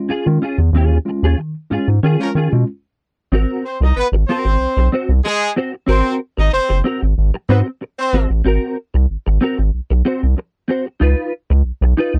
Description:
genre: funk.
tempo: 94 BPM.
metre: 4/4.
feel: straight.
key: Ab mixolydian.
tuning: A4 = 439 Hz.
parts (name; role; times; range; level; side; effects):
mellow tine electric piano; stabs; 0.0-2.7 s; Eb3 to F4; -25 LUFS; equal; none.
clean electric guitar; accompaniment; 0.1-12.2 s; C4 to C5; -22 LUFS; equal; ensemble chorus.
round analog bass; bass; 0.3-12.2 s; Gb1 to Eb3; -16 LUFS; equal; none.
clear horn section; second line; 2.2-8.2 s; F3 to Eb5; -21 LUFS; equal; none.
room: little or no reverb.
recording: dry, close 1970s-style studio recording.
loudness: -17 LUFS.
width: mono.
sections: 0.0-3.3 A section; 3.3-12.2 B section.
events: band accent 0.7-3.3; stop 2.7-3.3.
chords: 0.0 Eb9sus4; 3.3 Ab9; 11.0 Db9.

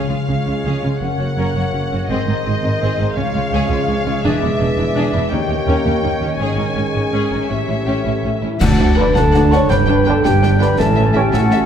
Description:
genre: cinematic, heroic adventure film score.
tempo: 110 BPM (dotted quarters).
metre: 12/8.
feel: straight.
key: D major from 8.6 s.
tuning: A4 = 439 Hz.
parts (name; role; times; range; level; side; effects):
rich symphonic violin section; melody; 0.0-11.6 s; Eb5 to Ab5; -26 LUFS; left 3 dB; none.
hollow concert flute; second line; 0.0-11.7 s; Eb5 to C#6; -27 LUFS; left 2 dB; none.
mellow clarinet; second line; 0.0-11.7 s; C#4 to Bb4; -25 LUFS; equal; none.
warm oboe; second line; 0.0-11.7 s; C5 to A5; -27 LUFS; equal; none.
warm symphonic violin section; second line; 0.0-11.6 s; C4 to Bb4; -31 LUFS; left 3 dB; none.
warm symphonic viola section; accompaniment; 0.0-11.6 s; A3 to D4; -26 LUFS; equal; none.
bright trombone section; sustained chords; 0.0-11.2 s; Db3 to D4; -26 LUFS; right 4 dB; none.
dark French horn section; sustained chords; 0.0-11.7 s; C4 to C#5; -23 LUFS; left 2 dB; none.
concert harp; arpeggios; 0.0-11.7 s; Gb2 to E6; -27 LUFS; left 9 dB; none.
timpani; percussion; 0.0-2.6 s; Ab2 to Db3; -30 LUFS; left 1 dB; none.
dark symphonic cello section; bass; 0.1-11.7 s; Db2 to Db3; -21 LUFS; right 3 dB; none.
warm symphonic double bass section; bass; 0.1-11.7 s; E1 to Eb2; -22 LUFS; right 3 dB; none.
cymbal swell, clash cymbals and concert bass drum; percussion; 4.2-9.3 s; none; -23 LUFS; left 1 dB; none.
concert snare drum, clash cymbals and concert bass drum; drums; 8.6-11.7 s; none; -23 LUFS; left 1 dB; none.
room: wet scoring stage reverb, RT60 1.8 s.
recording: none.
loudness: -14 LUFS.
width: side -8 dB against mid.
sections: 0.0-8.6 A section; 8.6-11.7 B section.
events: band accent 8.6-9.0.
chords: 0.0 Db; 1.0 Gb; 2.1 Ab; 3.2 Db; 4.2 E7; 5.3 Eb7; 6.4 Absus4; 7.5 A7; 8.6 D; 9.7 G; 10.8 A.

